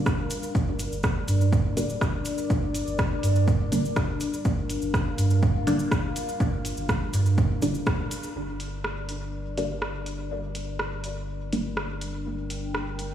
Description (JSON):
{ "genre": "dub techno", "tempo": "123 BPM", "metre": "4/4", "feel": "straight", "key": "G minor", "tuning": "A4 = 440 Hz", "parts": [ { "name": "dark analog pad", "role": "sustained chords", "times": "0.0-13.1 s", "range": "G3 to G5", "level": "-33 LUFS", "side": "left 2 dB", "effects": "chorus, phaser, sidechain pumping" }, { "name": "filtered dub chord stab", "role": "stabs", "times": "0.0-11.7 s", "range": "D3 to D4", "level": "-31 LUFS", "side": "equal", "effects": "chorus, phaser, sidechain pumping, dub echo" }, { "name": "deep house drum kit", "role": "drums", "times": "0.1-13.1 s", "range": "hi-hat, rim click", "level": "-34 LUFS", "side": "right 1 dB", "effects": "dub echo" }, { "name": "electronic kick drum", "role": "drums", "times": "0.1-8.0 s", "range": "none", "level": "-26 LUFS", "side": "equal", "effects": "none" }, { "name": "cabasa", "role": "percussion", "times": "0.1-8.3 s", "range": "none", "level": "-40 LUFS", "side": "left 2 dB", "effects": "none" }, { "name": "warm sub bass", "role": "bass", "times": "0.2-13.1 s", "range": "D1 to G2", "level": "-28 LUFS", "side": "right 1 dB", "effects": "sidechain pumping" } ], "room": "light reverb, digital ambience", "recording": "played on a big sound system in a bare room, stone room reverb, small room ambience", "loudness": "-24 LUFS", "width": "side -10 dB against mid", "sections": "0.0-8.4 A section; 8.4-13.1 B section", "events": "band accent 7.9", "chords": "0.0 Gm", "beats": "0.06 | 0.55 1.04 1.52 2.01 | 2.50 2.99 3.48 3.96 | 4.45 4.94 5.43 5.92 | 6.40 6.89 7.38 7.87 | 8.35 8.84 9.33 9.82 | 10.31 10.79 11.28 11.77 | 12.26 12.74" }